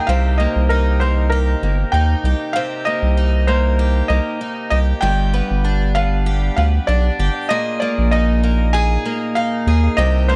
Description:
folktronica; 97 BPM; 4/4; swing 56% on 16ths; C minor; A4 = 438 Hz
felt-muted upright piano; melody; 0.0-10.4 s; Bb4 to Ab5; -24 LUFS; equal
picked twelve-string acoustic guitar; arpeggios; 0.0-10.4 s; G2 to Ab4; -24 LUFS; equal; vintage 12-bit sampler grit
round analog bass; bass; 0.1-10.4 s; G1 to Eb2; -18 LUFS; equal
little or no reverb; -17 LUFS; mono
0.0-10.4 A section
0.1 Cm7; 5.0 G7; 7.5 Bb7sus4
| 0.08 0.70 1.32 1.94 | 2.56 3.17 3.79 4.41 | 5.03 5.65 6.27 6.88 | 7.50 8.12 8.74 9.36 | 9.98

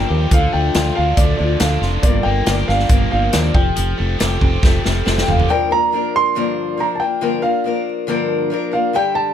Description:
folk rock and heartland rock; 139 BPM; 4/4; straight; G minor; A4 = 442 Hz
dark grand piano; melody; 0.0-9.3 s; D5 to C6; -20 LUFS; right 2 dB
picked old ladder-braced acoustic guitar; accompaniment; 0.0-9.3 s; G2 to Bb4; -21 LUFS; left 4 dB
overdriven electric guitar; riff; 0.0-5.5 s; G2 to G4; -24 LUFS; right 1 dB
fingered electric bass; bass; 0.0-5.4 s; F1 to Eb2; -18 LUFS; equal
natural country drum kit; drums; 0.3-5.5 s; hi-hat, kick drum, snare drum, toms; -17 LUFS; equal
light reverb; -14 LUFS; side -9 dB against mid
0.0-5.5 A section; 5.5-9.3 B section
drum fill 4.6-5.5
0.3 Dm; 2.0 Gm7; 3.6 Fadd9; 5.5 Gm7
| 0.32 0.75 1.18 1.61 | 2.04 2.47 2.91 3.34 | 3.77 4.20 4.63 5.07 | 5.50 5.93 6.36 6.79 | 7.22 7.65 8.09 8.52 | 8.95

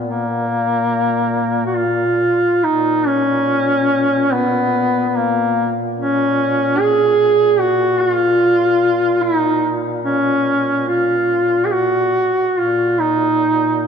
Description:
caucasian folk, Caucasian lament; 72 BPM; 3/4; rubato; Bb phrygian; A4 = 442 Hz
mellow duduk; drone; 0.0-13.9 s; Bb2; -25 LUFS; equal
clear duduk; melody; 0.1-13.9 s; Bb3 to Ab4; -14 LUFS; equal
wet church reverb, RT60 2.7 s; dark, warm production; -14 LUFS; side -7 dB against mid
0.0-2.6 A section; 2.6-13.9 B section
| 0.04 0.88 1.74 | 2.62 3.48 4.31 | 5.14 5.96 6.78 | 7.59 8.40 9.22 | 10.04 10.88 11.72 | 12.57 13.42

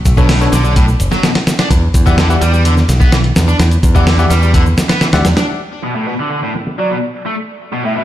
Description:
breakbeat, breaks; 127 BPM; 4/4; straight; B minor; A4 = 440 Hz
modern bright picked electric bass; bass; 0.1-5.3 s; F#1 to E2; -12 LUFS; equal
dusty soul sampler-style drum kit; drums; 0.1-8.0 s; hi-hat, kick drum, snare drum; -13 LUFS; equal; low-pass filter on hats, low-pass filter on kick, low-pass filter on snare
shaker; drums; 0.1-5.5 s; -31 LUFS; left 1 dB
high-gain distorted guitar; riff; 0.2-8.0 s; A2 to D4; -18 LUFS; equal; distortion, tube saturation, vintage 12-bit sampler grit, low-pass filter, ping-pong delay
bell-like tine electric piano; stabs; 0.2-5.2 s; D4 to F#5; -22 LUFS; left 3 dB; ping-pong delay
reedy baroque flute; melody; 6.8-8.0 s; D5 to E5; -21 LUFS; right 2 dB; small speaker sound, ping-pong delay
light reverb; played on a big sound system in a bare room, stone room reverb; -10 LUFS; side -13 dB against mid
0.0-5.5 A section; 5.5-8.0 B section
0.0 Bm9; 1.5 Em9; 5.5 Bm7
0.29 0.77 1.24 | 1.71 2.18 2.65 3.13 | 3.60 4.07 4.54 5.02 | 5.49 5.96 6.43 6.91 | 7.38 7.85

